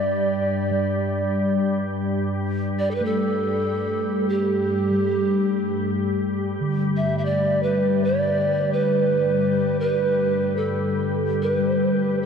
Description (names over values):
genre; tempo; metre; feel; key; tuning
world meditative, free-time meditation music; free time; none; none; G major pentatonic; A4 = 440 Hz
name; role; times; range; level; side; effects
mellow hollow polished pan flute; melody; 0.0-12.3 s; G4 to E5; -23 LUFS; right 2 dB; tape echo
soft additive organ-like pad; drone; 0.0-12.3 s; G2 to G3; -25 LUFS; left 1 dB; ensemble chorus, built-in reverb
quartz singing bowl; texture; 0.7-12.3 s; D3 to A3; -26 LUFS; left 2 dB; none
room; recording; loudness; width
wet huge ambient reverb, RT60 8.2 s; dark, warm production; -20 LUFS; side -6 dB against mid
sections
0.0-6.2 A section; 6.2-12.3 A section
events
none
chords
none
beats
free time